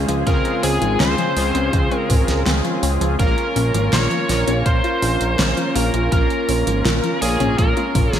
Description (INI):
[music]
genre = synthwave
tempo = 82 BPM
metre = 4/4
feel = straight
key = unclear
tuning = A4 = 439 Hz
[part]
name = warm analog pad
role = sustained chords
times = 0.0-8.2 s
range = Db3 to Ab4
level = -26 LUFS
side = equal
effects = chorus
[part]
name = wide unison pluck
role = arpeggios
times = 0.0-8.1 s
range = F3 to F4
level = -27 LUFS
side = left 3 dB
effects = ping-pong delay
[part]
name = analog synth brass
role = stabs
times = 0.0-8.2 s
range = Ab3 to Bb4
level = -24 LUFS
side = equal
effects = chorus, ping-pong delay
[part]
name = fat analog bass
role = bass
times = 0.0-8.2 s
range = Ab1 to Db2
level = -21 LUFS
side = equal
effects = none
[part]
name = pop drum kit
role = drums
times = 0.1-8.2 s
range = hi-hat, snare drum, toms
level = -23 LUFS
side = equal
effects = gated reverb
[part]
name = biting lead guitar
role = melody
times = 0.3-8.2 s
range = Ab4 to Db5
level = -23 LUFS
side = equal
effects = overdrive, digital delay
[part]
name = electronic kick drum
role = drums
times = 0.3-8.1 s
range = none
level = -20 LUFS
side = equal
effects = none
[sound]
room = moderate lush hall reverb, RT60 2.3 s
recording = bright 1980s-style digital production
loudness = -16 LUFS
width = side -9 dB against mid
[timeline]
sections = 0.0-8.2 A section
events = drum fill 7.6-8.2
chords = 0.0 Dbmaj7; 3.2 Bbm